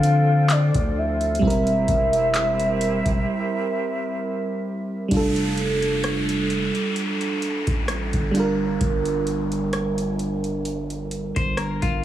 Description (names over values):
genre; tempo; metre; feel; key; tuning
contemporary R&B; 65 BPM; 4/4; swing 54% on 16ths; F major; A4 = 440 Hz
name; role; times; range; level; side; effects
soft octave-layered synth lead; melody; 0.0-4.2 s; D5 to F5; -23 LUFS; equal; chorus, tremolo, tape echo
FM electric piano; accompaniment; 0.0-12.0 s; F3 to Bb4; -24 LUFS; right 2 dB; chorus
flute section; sustained chords; 0.0-5.1 s; C4 to G5; -29 LUFS; right 1 dB; none
long sustained 808-style bass; bass; 0.0-12.0 s; E1 to D3; -25 LUFS; left 1 dB; none
booming analog drum machine; drums; 0.0-12.0 s; handclaps, hi-hat, kick drum, rim click; -26 LUFS; equal; none
downlifter; sound effects; 5.1-12.0 s; none; -31 LUFS; left 1 dB; none
clean electric guitar; arpeggios; 11.4-12.0 s; F4 to C5; -27 LUFS; left 6 dB; none
room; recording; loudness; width
light reverb; studio reverb; -20 LUFS; side -12 dB against mid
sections
0.0-5.1 A section; 5.1-12.0 B section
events
break 3.3-5.1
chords
0.0 Dm7; 1.4 C7/E; 5.1 F69; 8.3 Gm7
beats
0.50 | 1.42 2.35 3.27 4.19 | 5.11 6.04 6.96 7.88 | 8.81 9.73 10.65 11.57